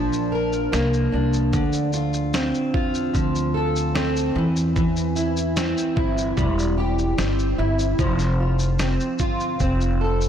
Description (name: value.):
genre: acoustic pop.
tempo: 74 BPM.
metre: 4/4.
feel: straight.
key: F major.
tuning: A4 = 440 Hz.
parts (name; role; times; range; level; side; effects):
fingerpicked plugged-in steel-string acoustic guitar; accompaniment; 0.0-10.3 s; D3 to Bb4; -22 LUFS; equal; double-tracked left and right.
upright bass; bass; 0.0-10.3 s; E1 to E2; -24 LUFS; equal; tube saturation.
dusty soul sampler-style drum kit; drums; 0.1-10.3 s; kick drum, shaker, snare drum; -27 LUFS; equal; none.
room: light reverb, small room ambience.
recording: blown-out, overdriven recording, overdrive.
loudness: -19 LUFS.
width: side -9 dB against mid.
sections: 0.0-10.3 A section.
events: none.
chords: 0.0 Bb; 1.5 Dm7; 4.4 C; 8.0 F.